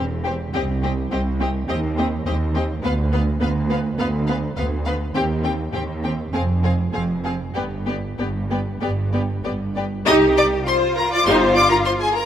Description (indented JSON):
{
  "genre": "quick classical-period movement for string orchestra",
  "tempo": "94-105 BPM",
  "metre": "4/4",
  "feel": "rubato",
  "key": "C minor",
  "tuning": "A4 = 444 Hz",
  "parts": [
    { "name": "rich symphonic violin section", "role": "melody", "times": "0.0-12.3 s", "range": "C5 to Eb6", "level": "-25 LUFS", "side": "left 2 dB", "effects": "none" },
    { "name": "warm symphonic violin section", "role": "second line", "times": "0.0-12.3 s", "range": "G4 to Eb5", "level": "-26 LUFS", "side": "left 4 dB", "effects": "none" },
    { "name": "rich symphonic viola section", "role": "accompaniment", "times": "0.0-11.5 s", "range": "B3 to G4", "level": "-24 LUFS", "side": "equal", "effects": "none" },
    { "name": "rich symphonic double bass section", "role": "bass", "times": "0.0-11.8 s", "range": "E1 to Eb2", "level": "-25 LUFS", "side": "right 2 dB", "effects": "none" },
    { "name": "warm symphonic cello section", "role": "bass", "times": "0.0-12.3 s", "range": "C2 to G4", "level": "-24 LUFS", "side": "right 1 dB", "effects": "none" }
  ],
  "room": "moderate scoring stage reverb, RT60 1.9 s",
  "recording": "none",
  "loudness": "-18 LUFS",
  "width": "side -10 dB against mid",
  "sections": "0.0-10.1 A section; 10.1-12.3 B section",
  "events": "none",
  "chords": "0.0 C/E; 0.5 Cm; 1.7 Cm/Eb; 2.8 Bdim/D; 5.2 Cm/Eb; 6.3 Fm; 7.6 G; 10.1 Cm",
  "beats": "| 0.54 1.12 1.69 2.26 | 2.84 3.42 4.00 4.58 | 5.15 5.74 6.34 6.94 | 7.56 8.19 8.82 9.44 | 10.07 10.67 11.26 11.85"
}